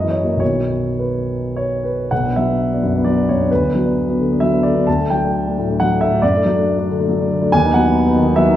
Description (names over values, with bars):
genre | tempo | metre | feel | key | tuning
classical, romantic character piece for solo piano | 101-144 BPM | 3/4 | rubato | B minor | A4 = 440 Hz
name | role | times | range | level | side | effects
warm concert grand piano | solo | 0.0-8.6 s | B1 to A5 | -14 LUFS | equal | none
room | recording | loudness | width
wet recital hall reverb, RT60 1.4 s | none | -15 LUFS | side -11 dB against mid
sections
0.0-2.1 A section; 2.1-8.6 B section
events
none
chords
0.4 B; 2.1 Bm; 3.5 Bm/D; 4.9 D; 6.2 D/F#; 7.5 B/D#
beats
| 0.40 1.00 1.57 | 2.11 2.58 3.04 | 3.50 3.95 4.41 | 4.87 5.33 5.78 | 6.22 6.66 7.08 | 7.52 7.95 8.37